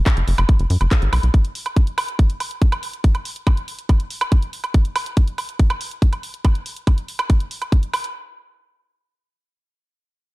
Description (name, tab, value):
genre	psychedelic trance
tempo	141 BPM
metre	4/4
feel	straight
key	unclear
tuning	A4 = 440 Hz
part	tight sequencer bass	bass	0.0-1.3 s	F#1 to F#2	-17 LUFS	equal	none
part	electronic kick drum	drums	0.1-7.8 s	none	-15 LUFS	equal	small room ambience
part	garage drum kit	drums	0.1-8.1 s	handclaps, hi-hat, woodblock	-26 LUFS	right 2 dB	small room ambience
room	digital ambience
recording	dark, warm production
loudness	-17 LUFS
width	side -20 dB against mid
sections	0.0-8.1 A section; 8.1-10.3 B section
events	none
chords	none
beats	0.06 0.49 0.91 | 1.34 1.76 2.19 2.62 | 3.04 3.47 3.89 4.32 | 4.74 5.17 5.59 6.02 | 6.45 6.87 7.30 7.72